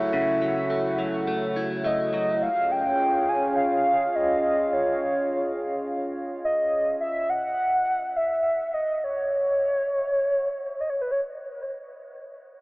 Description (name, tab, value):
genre	dream pop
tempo	89-105 BPM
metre	4/4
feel	straight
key	unclear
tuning	A4 = 441 Hz
part	warbly nostalgic lead	melody	0.0-11.2 s	Cb5 to Ab5	-24 LUFS	equal	chorus, digital delay
part	hollow soft pad	sustained chords	0.0-7.0 s	C#3 to F#5	-28 LUFS	equal	chorus
part	direct-recorded clean electric guitar	arpeggios	0.0-2.5 s	C#3 to E4	-31 LUFS	equal	lush chorus, digital delay
room	moderate huge ambient reverb, RT60 7.7 s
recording	AM radio sound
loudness	-22 LUFS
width	side -25 dB against mid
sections	0.0-11.9 A section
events	slowing down 7.0-11.9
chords	0.0 A6/C#; 2.4 Db; 7.0 N.C.